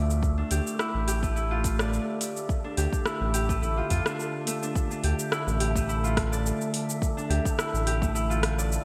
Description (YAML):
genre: organic downtempo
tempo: 106 BPM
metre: 4/4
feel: swing 54% on 16ths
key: D minor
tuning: A4 = 440 Hz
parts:
  - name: warbly tape-like pad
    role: sustained chords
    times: 0.0-8.8 s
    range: D3 to E5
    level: -37 LUFS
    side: equal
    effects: chorus, built-in reverb, sidechain pumping
  - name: Celtic harp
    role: arpeggios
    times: 0.0-8.8 s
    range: A3 to D5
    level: -33 LUFS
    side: equal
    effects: digital delay
  - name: round analog bass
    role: bass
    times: 0.0-8.8 s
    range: A1 to F2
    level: -29 LUFS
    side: equal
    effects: none
  - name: wind-like tuned noise texture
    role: texture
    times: 0.0-8.8 s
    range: A4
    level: -44 LUFS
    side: equal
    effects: built-in reverb, subtle chorus
  - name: deep house drum kit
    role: drums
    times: 0.1-8.8 s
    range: hi-hat, rim click, shaker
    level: -35 LUFS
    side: equal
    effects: overdrive
  - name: electronic kick drum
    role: drums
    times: 0.2-8.1 s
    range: none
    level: -31 LUFS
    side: equal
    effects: overdrive
room: moderate lush hall reverb, RT60 2.0 s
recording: bright 1980s-style digital production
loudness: -27 LUFS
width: mono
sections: 0.0-4.8 A section; 4.8-8.8 B section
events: break 4.2-4.8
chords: 0.0 Dm